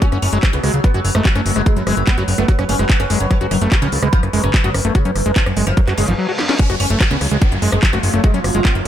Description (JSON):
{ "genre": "psychedelic trance", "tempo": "146 BPM", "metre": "4/4", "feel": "straight", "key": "F# harmonic minor", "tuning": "A4 = 445 Hz", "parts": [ { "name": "oud", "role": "melody", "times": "0.0-8.9 s", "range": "F#2 to C#4", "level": "-23 LUFS", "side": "left 1 dB", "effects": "phaser, sidechain pumping, digital delay" }, { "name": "overtone-sweeping drone", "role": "sustained chords", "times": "0.0-8.9 s", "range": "E#3 to B4", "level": "-25 LUFS", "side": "right 2 dB", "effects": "chorus, built-in reverb, phaser, sidechain pumping" }, { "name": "overdriven acid bass", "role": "riff", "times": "0.0-8.9 s", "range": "E#3 to F#4", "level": "-23 LUFS", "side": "moving between left 6 dB and right 7 dB", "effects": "auto-pan, vintage 12-bit sampler grit, sidechain pumping, digital delay" }, { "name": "drum and bass drum kit", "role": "drums", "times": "0.0-8.9 s", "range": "handclaps, hi-hat, rim click, snare drum", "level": "-22 LUFS", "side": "equal", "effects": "none" }, { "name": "electronic kick drum", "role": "drums", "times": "0.0-8.7 s", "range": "none", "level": "-14 LUFS", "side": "equal", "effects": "none" }, { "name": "fat analog bass", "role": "bass", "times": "0.1-8.9 s", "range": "F#1 to F#2", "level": "-19 LUFS", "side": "equal", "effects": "none" }, { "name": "reverse cymbal and downlifter", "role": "sound effects", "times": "6.0-8.9 s", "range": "none", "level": "-26 LUFS", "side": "right 1 dB", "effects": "none" } ], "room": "little or no reverb", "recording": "none", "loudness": "-13 LUFS", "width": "side -11 dB against mid", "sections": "0.0-6.6 A section; 6.6-8.9 B section", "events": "reverse cymbal 6.0-6.6; drum fill 6.4; drop 6.6-8.9", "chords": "0.0 F#5" }